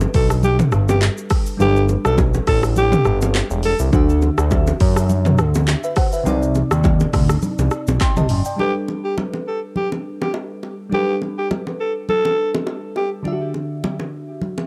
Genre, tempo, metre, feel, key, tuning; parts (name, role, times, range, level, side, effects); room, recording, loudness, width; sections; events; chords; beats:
afrobeats; 103 BPM; 4/4; swing 55% on 16ths; G major; A4 = 444 Hz
bell-like FM electric piano; accompaniment; 0.0-14.7 s; C3 to C6; -28 LUFS; equal; chorus, cassette tape
fat analog bass; bass; 0.0-8.4 s; E1 to F#2; -20 LUFS; equal
deep house drum kit; drums; 0.0-8.6 s; handclaps, hi-hat, kick drum, rim click, shaker, toms; -22 LUFS; equal; cassette tape
bongos and congas; percussion; 0.0-14.7 s; -27 LUFS; equal
breathy alto saxophone; melody; 0.2-3.8, 8.6-13.1 s; G4 to A4; -24 LUFS; equal; tape echo
digital ambience; home recording on cassette; -18 LUFS; mono
0.0-8.6 A section; 8.6-14.7 B section
0.0 Gadd9; 3.9 Dadd9; 6.3 Cmadd9; 8.6 Gadd9; 13.3 Dadd9
0.43 1.02 | 1.60 2.18 2.77 3.35 | 3.93 4.51 5.09 5.68 | 6.26 6.84 7.42 8.01 | 8.59 9.17 9.76 10.34 | 10.92 11.50 12.09 12.67 | 13.25 13.83 14.42